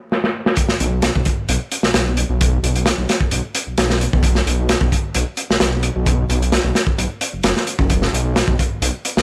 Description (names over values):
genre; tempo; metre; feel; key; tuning
breakbeat, breaks; 131 BPM; 4/4; straight; unclear; A4 = 440 Hz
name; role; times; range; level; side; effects
crunchy breakbeat drum kit; drums; 0.1-9.2 s; hi-hat, kick drum, snare drum; -20 LUFS; equal; low-pass filter on kick, low-pass filter on hats, low-pass filter on snare, low-pass filter on room
detuned saw bass; bass; 0.8-9.2 s; F#1 to B1; -22 LUFS; equal; none
room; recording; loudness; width
little or no reverb; vinyl crackle, lossy compression artefacts; -18 LUFS; mono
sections
0.6-9.2 A section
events
stop 0.0-0.6; drum fill 0.1-0.6; drop 0.6-9.2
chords
none